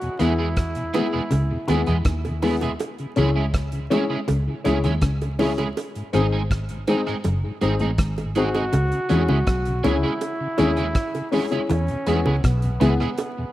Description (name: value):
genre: roots reggae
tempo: 81 BPM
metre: 4/4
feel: straight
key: C# minor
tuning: A4 = 440 Hz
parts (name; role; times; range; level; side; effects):
- clear trombone; melody; 0.0-2.4, 8.4-13.5 s; B3 to F#4; -29 LUFS; right 1 dB; dub echo
- mellow tonewheel organ; accompaniment; 0.0-13.4 s; E2 to C#4; -31 LUFS; equal; none
- damped 70s drum kit; drums; 0.0-13.4 s; hi-hat, kick drum, rim click; -26 LUFS; equal; none
- electric guitar at the edge of break-up; accompaniment; 0.2-13.1 s; G#3 to G#4; -29 LUFS; right 4 dB; analog chorus, dub echo
- semi-hollow electric guitar; riff; 0.2-12.9 s; F#2 to E3; -28 LUFS; left 1 dB; none
- dark upright piano; stabs; 0.2-13.0 s; B3 to G#4; -26 LUFS; left 4 dB; none
- vintage muted fingered electric bass; bass; 0.2-13.0 s; F#1 to E2; -23 LUFS; equal; none
- bongos; percussion; 0.9-13.4 s; none; -30 LUFS; right 4 dB; none
room: light reverb, small room ambience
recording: rough home demo mix, vinyl crackle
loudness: -20 LUFS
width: side -14 dB against mid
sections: 0.0-8.7 A section; 8.7-13.5 B section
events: none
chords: 0.0 E; 2.8 C#m; 5.8 G#; 8.7 C#m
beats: 0.57 1.31 2.06 | 2.80 3.54 4.28 5.02 | 5.76 6.51 7.25 7.99 | 8.73 9.47 10.21 10.96 | 11.70 12.44 13.18